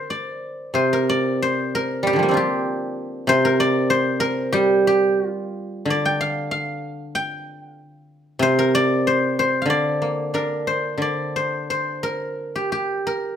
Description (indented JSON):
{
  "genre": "chinese traditional, Chinese solo plucked strings",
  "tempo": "88-99 BPM",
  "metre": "2/4",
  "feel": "rubato",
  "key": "D jue mode",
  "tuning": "A4 = 442 Hz",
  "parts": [
    { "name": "guzheng", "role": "solo", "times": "0.0-13.4 s", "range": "C3 to G5", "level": "-19 LUFS", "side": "equal", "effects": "none" }
  ],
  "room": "light reverb",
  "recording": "band playing live in one room",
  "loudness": "-19 LUFS",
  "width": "side -8 dB against mid",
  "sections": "0.7-11.0 A section; 11.0-13.4 B section",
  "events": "none",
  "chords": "none"
}